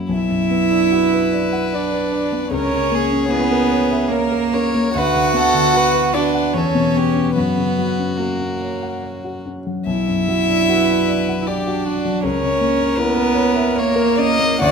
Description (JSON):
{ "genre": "classical, slow romantic movement for piano quartet", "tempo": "74 BPM", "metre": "3/4", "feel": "uneven beats, rubato", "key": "B minor", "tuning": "A4 = 440 Hz", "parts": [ { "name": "rich violin", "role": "second line", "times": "0.0-14.7 s", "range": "F#4 to D#5", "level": "-24 LUFS", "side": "left 3 dB", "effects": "none" }, { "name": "dark grand piano", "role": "accompaniment", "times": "0.0-14.7 s", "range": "B1 to F#5", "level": "-20 LUFS", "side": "left 3 dB", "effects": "none" }, { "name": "warm violin", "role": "melody", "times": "0.1-14.7 s", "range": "A#4 to F#5", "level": "-23 LUFS", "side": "left 7 dB", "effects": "none" }, { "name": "rich cello", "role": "second line", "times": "0.1-14.7 s", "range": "A#3 to F#4", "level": "-19 LUFS", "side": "right 9 dB", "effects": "none" } ], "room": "moderate recital hall reverb, RT60 1.4 s", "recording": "close, detailed microphones", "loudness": "-15 LUFS", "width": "side -6 dB against mid", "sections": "0.1-14.7 A section", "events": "none", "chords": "0.1 Bm; 2.5 A#dim/C#; 5.0 Bm/D; 6.6 C#m7b5/E; 7.4 F#; 9.9 Bm; 12.2 A#dim/C#", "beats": "| 0.10 0.93 1.74 | 2.52 3.32 4.11 | 4.95 5.75 6.55 | 7.36 8.20 9.03 | 9.87 10.69 11.48 | 12.24 12.99 13.78 | 14.62" }